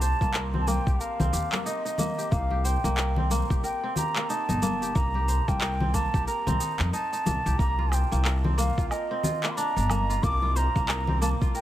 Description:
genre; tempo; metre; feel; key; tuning
organic downtempo; 91 BPM; 4/4; swing 60% on 16ths; C dorian; A4 = 440 Hz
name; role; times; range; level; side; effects
bansuri; melody; 0.0-11.6 s; Eb5 to D6; -30 LUFS; right 1 dB; digital delay
kora; arpeggios; 0.0-11.6 s; Bb3 to C5; -32 LUFS; right 1 dB; low-pass filter, tape echo
upright bass; bass; 0.0-11.5 s; G1 to F2; -26 LUFS; equal; tube saturation, sidechain pumping
electronic shaker, handclaps and woodblock; drums; 0.0-11.6 s; none; -33 LUFS; equal; none
electronic kick drum; drums; 0.2-11.5 s; none; -27 LUFS; equal; none
congas; percussion; 0.5-11.4 s; none; -32 LUFS; left 3 dB; none
room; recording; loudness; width
little or no reverb; none; -23 LUFS; side -13 dB against mid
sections
0.0-11.6 A section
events
none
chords
0.0 Cm7; 7.6 Bbadd9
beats
0.34 1.00 1.66 | 2.32 2.98 3.63 4.29 | 4.95 5.61 6.27 6.93 | 7.59 8.25 8.91 9.57 | 10.23 10.89 11.55

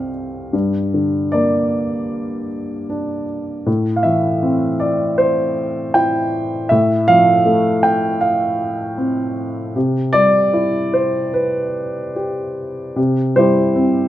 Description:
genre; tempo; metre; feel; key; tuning
classical, lyrical solo piano; 72-81 BPM; 4/4; rubato; C major; A4 = 442 Hz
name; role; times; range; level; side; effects
warm upright piano; solo; 0.0-14.1 s; C2 to G5; -15 LUFS; equal; none
room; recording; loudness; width
light reverb; close, detailed microphones; -15 LUFS; side -13 dB against mid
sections
0.0-13.0 A section; 13.0-14.1 B section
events
none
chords
0.0 F; 0.5 Gm; 3.7 Am; 6.7 F/A; 9.8 Cmaj7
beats
| 0.54 1.34 2.12 2.90 | 3.67 4.43 5.19 5.95 | 6.70 7.46 8.21 8.98 | 9.75 10.54 11.34 12.16 | 12.97 13.77

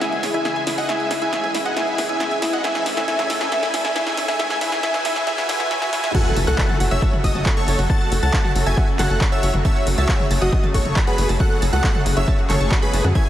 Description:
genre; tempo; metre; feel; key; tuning
uplifting trance; 137 BPM; 4/4; straight; F# minor; A4 = 440 Hz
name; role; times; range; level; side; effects
dense compressed supersaw; melody; 0.0-13.3 s; F#4 to A5; -23 LUFS; equal; sidechain pumping, low-pass filter, tape echo
supersaw pad; sustained chords; 0.0-13.3 s; C#3 to B4; -27 LUFS; equal; ensemble chorus, sidechain pumping
analog pluck; arpeggios; 0.0-13.2 s; E4 to A5; -29 LUFS; equal; analog chorus, sidechain pumping, tape echo
punchy analog drum machine; drums; 0.0-13.3 s; crash cymbal, handclaps, hi-hat, snare drum, toms; -26 LUFS; equal; high-pass filter on snare, sidechain pumping on hats, high-pass filter on hats, sidechain pumping on toms, high-pass filter on toms, sidechain pumping on cymbals, high-pass filter on cymbals
riser, swell and impact; sound effects; 1.3-7.9 s; none; -32 LUFS; equal; none
plucky unison lead; second line; 6.1-13.3 s; B5 to A6; -30 LUFS; left 1 dB; phaser, sidechain pumping, tape echo
electronic kick drum; drums; 6.1-13.2 s; none; -19 LUFS; equal; none
tight sequencer bass; bass; 6.4-13.1 s; F#1 to F#2; -20 LUFS; equal; sidechain pumping
room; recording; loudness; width
wet huge ambient reverb, RT60 4.9 s; dreamy mix soaked in reverb, high-pass filter; -17 LUFS; side -12 dB against mid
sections
0.0-6.1 A section; 6.1-13.3 B section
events
build-up 0.0-6.1; drum fill 0.0-6.1; filter sweep on synth pluck 0.0-6.1; riser 1.3-6.1; swell 5.3-6.1; drop 6.1-13.3; impact 6.1-7.9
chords
0.0 C#m; 2.6 A/C#; 6.1 F#m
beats
0.01 0.45 | 0.89 1.33 1.76 2.20 | 2.64 3.08 3.52 3.96 | 4.39 4.83 5.27 5.71 | 6.14 6.58 7.02 7.46 | 7.90 8.34 8.77 9.21 | 9.65 10.09 10.52 10.96 | 11.40 11.84 12.28 12.71 | 13.15

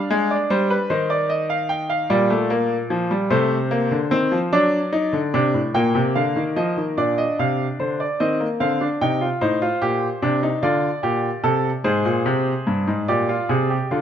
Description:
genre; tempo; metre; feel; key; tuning
classical, baroque-style 3-part fugue for grand piano; 49 BPM (dotted quarters); 6/8; straight; unclear; A4 = 440 Hz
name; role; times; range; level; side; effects
clear concert grand piano; solo; 0.0-14.0 s; G2 to G5; -18 LUFS; equal; none
room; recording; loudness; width
moderate recital hall reverb, RT60 1.5 s; close, detailed microphones; -18 LUFS; side -9 dB against mid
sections
0.0-7.0 A section; 7.0-14.0 B section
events
none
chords
0.0 G7; 0.9 Cm/Eb; 2.1 Gm/Bb; 3.3 Adim/C; 4.5 D7/F#; 5.7 Gm/Bb; 7.0 Bbadd9; 8.2 Cm; 9.4 F/A; 10.6 Bb; 11.8 Abmaj9; 13.1 Bb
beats
0.90 | 2.10 3.31 | 4.53 5.75 | 6.98 8.20 | 9.41 10.63 | 11.85 13.08

